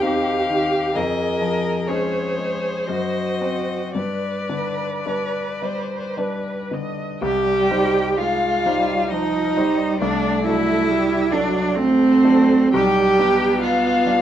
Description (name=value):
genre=classical, slow romantic movement for piano quartet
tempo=52-71 BPM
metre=3/4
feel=rubato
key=unclear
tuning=A4 = 440 Hz
part: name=rich violin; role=melody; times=0.0-14.2 s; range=C5 to G5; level=-27 LUFS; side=left 4 dB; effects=none
part: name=clear cello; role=second line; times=0.0-14.2 s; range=C4 to B4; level=-20 LUFS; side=right 2 dB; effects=none
part: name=bright concert grand piano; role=accompaniment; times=0.0-14.2 s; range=B1 to C5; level=-25 LUFS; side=left 3 dB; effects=none
part: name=rich viola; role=accompaniment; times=0.0-14.2 s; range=F3 to Eb5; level=-25 LUFS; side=right 1 dB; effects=none
room=moderate studio reverb, RT60 0.8 s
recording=worn, warbling old tape, cassette tape, warbly pitch drift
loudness=-18 LUFS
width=side -10 dB against mid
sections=0.0-7.2 A section; 7.2-14.2 B section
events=none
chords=0.0 Cm/Eb; 1.0 Db/F; 2.9 Cdim/Gb; 4.0 G; 7.2 Cm; 10.0 D7/C; 12.7 G/B